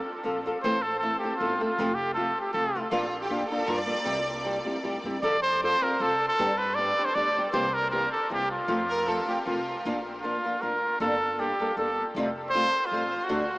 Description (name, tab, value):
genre	mexican folk, mariachi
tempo	156 BPM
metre	3/4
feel	straight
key	F major, Bb major from 9.8 s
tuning	A4 = 445 Hz
part	clear trumpet	melody	0.0-2.8, 5.2-13.6 s	F4 to D5	-27 LUFS	equal	analog delay
part	flamenco guitar	accompaniment	0.2-13.4 s	F2 to A4	-30 LUFS	equal	analog chorus
part	upright bass	bass	0.3-13.6 s	F1 to A2	-42 LUFS	equal	none
part	rich studio violin section	second line	2.9-4.5, 8.9-9.8 s	F4 to D5	-33 LUFS	right 1 dB	none
room	wet huge ambient reverb, RT60 8.2 s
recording	dreamy mix soaked in reverb, small speaker sound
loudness	-24 LUFS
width	side -22 dB against mid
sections	0.0-9.8 A section; 9.8-13.6 B section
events	none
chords	0.0 F; 0.6 Am; 1.8 F; 2.9 Bb; 4.1 C; 5.2 F; 6.4 G; 7.5 C7; 8.7 F; 9.8 Bb; 11.0 Gmadd9; 12.2 Fadd9